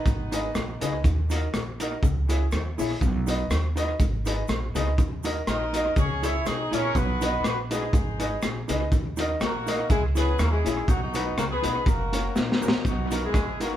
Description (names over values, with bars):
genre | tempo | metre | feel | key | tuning
ska | 122 BPM | 4/4 | swing 54% on 8ths | B major | A4 = 441 Hz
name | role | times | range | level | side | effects
warm horn section | melody | 0.0-0.8, 5.5-13.8 s | D#3 to E5 | -29 LUFS | equal | none
semi-hollow electric guitar | riff | 0.1-13.5 s | F#2 to D#3 | -36 LUFS | left 5 dB | spring reverb, dub echo
upright bass | bass | 0.1-13.8 s | F#1 to D#2 | -28 LUFS | right 1 dB | none
crunchy breakbeat drum kit | drums | 0.1-13.7 s | hi-hat, kick drum, rim click, snare drum | -26 LUFS | equal | dub echo
cabasa | percussion | 0.1-13.7 s | none | -46 LUFS | right 6 dB | none
mellow electric guitar | accompaniment | 0.3-13.7 s | C#4 to E5 | -34 LUFS | equal | none
warm upright piano | stabs | 0.3-13.8 s | A#3 to E5 | -32 LUFS | left 1 dB | none
room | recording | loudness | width
moderate studio reverb, RT60 0.8 s | band playing live in one room | -23 LUFS | side -11 dB against mid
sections
0.0-12.8 A section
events
drum fill 12.4-12.8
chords
0.1 G#m; 1.0 D#m; 2.0 C#m; 3.0 B; 4.0 G#m; 5.0 D#m; 6.0 C#m; 6.9 B; 7.9 G#m; 8.9 D#m; 9.9 C#m; 10.9 B; 11.9 F#; 12.8 Bmaj7